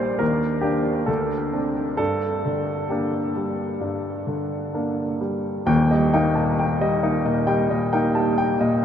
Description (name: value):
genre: classical, romantic character piece for solo piano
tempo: 66 BPM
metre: 4/4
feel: rubato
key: unclear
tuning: A4 = 440 Hz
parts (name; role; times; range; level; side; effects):
- clear baby grand piano; solo; 0.0-8.8 s; Eb1 to A5; -20 LUFS; equal; none
room: wet huge ambient reverb, RT60 8.2 s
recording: in a vast, echoing space, lossy compression artefacts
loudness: -20 LUFS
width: side -9 dB against mid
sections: 0.0-5.7 A section; 5.7-8.8 B section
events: none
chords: 0.2 Ebmaj7; 1.1 D5; 2.0 Gm; 5.7 Eb